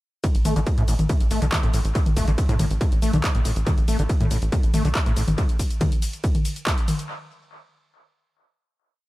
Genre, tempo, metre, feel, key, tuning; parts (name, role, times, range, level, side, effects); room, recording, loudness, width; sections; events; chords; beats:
driving peak-time techno; 140 BPM; 4/4; straight; A4 = 441 Hz
overdriven acid bass; riff; 0.2-5.2 s; A2 to A3; -27 LUFS; left 1 dB; distortion, lush chorus, sidechain pumping, dub echo
electronic kick drum; drums; 0.2-6.8 s; -22 LUFS; equal; overdrive
techno drum kit; drums; 0.2-7.1 s; handclaps, hi-hat, ride cymbal, shaker, toms; -27 LUFS; left 1 dB; overdrive, sidechain pumping on hats, sidechain pumping on cymbals, sidechain pumping on perc, sidechain pumping on toms, analog delay
tight sequencer bass; bass; 0.3-5.4 s; A1 to A2; -24 LUFS; equal; tube saturation, sidechain pumping
light reverb; echo-heavy mix; -19 LUFS; side -18 dB against mid
0.2-7.1 drop
drop 0.2-7.1
| 0.24 0.67 1.09 1.52 | 1.95 2.38 2.81 3.24 | 3.67 4.09 4.52 4.95 | 5.38 5.81 6.24 6.67